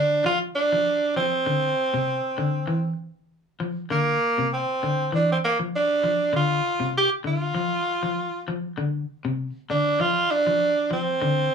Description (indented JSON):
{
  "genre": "afrobeat",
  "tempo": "98 BPM",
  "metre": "4/4",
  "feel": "swing 54% on 16ths",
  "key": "unclear",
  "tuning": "A4 = 440 Hz",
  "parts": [
    { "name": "raspy tenor saxophone", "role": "melody", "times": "0.0-11.5 s", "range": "Bb3 to G4", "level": "-22 LUFS", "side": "right 2 dB", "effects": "none" },
    { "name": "electric guitar at the edge of break-up", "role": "arpeggios", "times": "0.0-11.5 s", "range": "C3 to F3", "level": "-27 LUFS", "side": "left 3 dB", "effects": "none" }
  ],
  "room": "light reverb",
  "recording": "small room ambience",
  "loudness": "-21 LUFS",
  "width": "side -6 dB against mid",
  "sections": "0.0-11.5 A section",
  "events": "none",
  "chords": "0.0 Csus24; 1.5 Cadd9; 6.3 Csus24",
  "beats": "0.25 0.86 | 1.47 2.08 2.68 3.29 | 3.90 4.51 5.12 5.73 | 6.34 6.95 7.56 8.17 | 8.78 9.39 10.00 10.61 | 11.22"
}